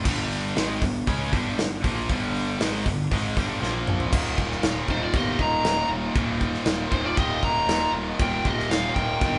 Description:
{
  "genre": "heavy metal",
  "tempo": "118 BPM",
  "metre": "4/4",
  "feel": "straight",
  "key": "unclear",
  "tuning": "A4 = 440 Hz",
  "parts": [
    { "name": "heavy high-gain guitar", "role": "riff", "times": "0.0-9.4 s", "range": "Eb2 to C#4", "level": "-34 LUFS", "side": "equal", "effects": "distortion" },
    { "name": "tight distorted guitar", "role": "riff", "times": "0.0-9.4 s", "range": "Eb2 to C#4", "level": "-32 LUFS", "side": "equal", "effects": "distortion" },
    { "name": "fuzz picked electric bass", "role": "bass", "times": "0.0-9.4 s", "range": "Eb1 to C#2", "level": "-33 LUFS", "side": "equal", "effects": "overdrive" },
    { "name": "big rock drum kit", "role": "drums", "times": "0.1-9.3 s", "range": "crash cymbal, hi-hat, kick drum, snare drum, toms", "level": "-29 LUFS", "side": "equal", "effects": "none" },
    { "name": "high-gain lead guitar", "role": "melody", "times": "4.9-9.4 s", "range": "C5 to Bb5", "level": "-28 LUFS", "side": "equal", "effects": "distortion" },
    { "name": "high-gain lead guitar", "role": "second line", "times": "4.9-9.4 s", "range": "Eb4 to Eb5", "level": "-36 LUFS", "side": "equal", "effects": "distortion" }
  ],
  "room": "moderate studio reverb, RT60 0.8 s",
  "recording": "band playing live in one room, nothing above 10.6 kHz",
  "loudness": "-25 LUFS",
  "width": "mono",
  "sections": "0.0-4.1 A section; 4.1-9.4 B section",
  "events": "drum fill 3.6-4.1",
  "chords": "0.0 G5; 3.6 Bb5; 4.1 Eb"
}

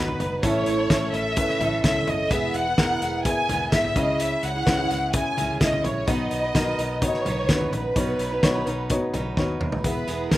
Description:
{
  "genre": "piano-driven pop",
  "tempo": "128 BPM",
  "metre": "4/4",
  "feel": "straight",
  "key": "B major",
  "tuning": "A4 = 440 Hz",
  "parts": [
    { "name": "warm studio violin section", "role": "melody", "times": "0.0-10.4 s", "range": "A#4 to G#5", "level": "-26 LUFS", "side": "equal", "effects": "none" },
    { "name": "dark baby grand piano", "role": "accompaniment", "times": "0.0-10.4 s", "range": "A2 to E5", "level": "-28 LUFS", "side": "left 2 dB", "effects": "slapback echo" },
    { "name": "picked steel-string acoustic guitar", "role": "riff", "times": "0.0-10.4 s", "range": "A2 to B4", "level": "-30 LUFS", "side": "right 4 dB", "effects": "slapback echo" },
    { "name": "vintage muted fingered electric bass", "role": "bass", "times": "0.0-10.4 s", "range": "E1 to D#2", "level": "-32 LUFS", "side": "equal", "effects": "none" },
    { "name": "loose indie drum kit", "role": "drums", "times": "0.1-10.4 s", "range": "hi-hat, kick drum, snare drum, toms", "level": "-25 LUFS", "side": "equal", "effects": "none" }
  ],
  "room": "little or no reverb",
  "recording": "none",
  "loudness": "-21 LUFS",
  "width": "side -15 dB against mid",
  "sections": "0.0-9.8 A section",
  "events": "drum fill 9.4-9.8",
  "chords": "0.4 A; 2.3 E; 4.0 C#m; 6.1 B; 8.0 Badd9; 9.8 E"
}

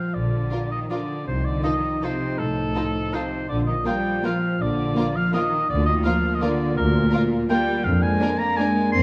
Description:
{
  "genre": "classical, orchestral ballroom waltz",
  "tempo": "164 BPM",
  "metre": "3/4",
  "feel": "uneven beats, rubato",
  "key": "Bb major",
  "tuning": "A4 = 440 Hz",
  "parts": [
    { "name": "warm oboe", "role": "second line", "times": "0.0-9.0 s", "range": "A4 to C6", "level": "-28 LUFS", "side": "equal", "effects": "none" },
    { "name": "mellow French horn section", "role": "sustained chords", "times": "0.0-9.0 s", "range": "F3 to F4", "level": "-31 LUFS", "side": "equal", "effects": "none" },
    { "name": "rich symphonic cello section", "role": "bass", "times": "0.0-9.0 s", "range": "A2 to C4", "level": "-29 LUFS", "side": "equal", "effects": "none" },
    { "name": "warm symphonic double bass section", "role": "bass", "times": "0.1-9.0 s", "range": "Bb1 to F2", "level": "-28 LUFS", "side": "equal", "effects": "none" },
    { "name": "warm symphonic violin section", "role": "melody", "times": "0.5-8.7 s", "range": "A4 to Bb4", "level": "-40 LUFS", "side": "equal", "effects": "none" },
    { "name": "warm symphonic violin section", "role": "second line", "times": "0.5-8.7 s", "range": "D4 to F4", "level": "-36 LUFS", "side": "equal", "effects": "none" },
    { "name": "warm symphonic viola section", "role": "accompaniment", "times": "0.5-8.7 s", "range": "Bb3 to F4", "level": "-33 LUFS", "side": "equal", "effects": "none" }
  ],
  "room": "moderate scoring stage reverb, RT60 1.8 s",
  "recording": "dark, warm production",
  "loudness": "-23 LUFS",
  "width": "mono",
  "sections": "0.0-9.0 A section",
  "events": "none",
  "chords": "0.0 Bb; 1.3 F7/C; 3.5 Bb; 5.7 Bb/D; 7.9 Bb7/F"
}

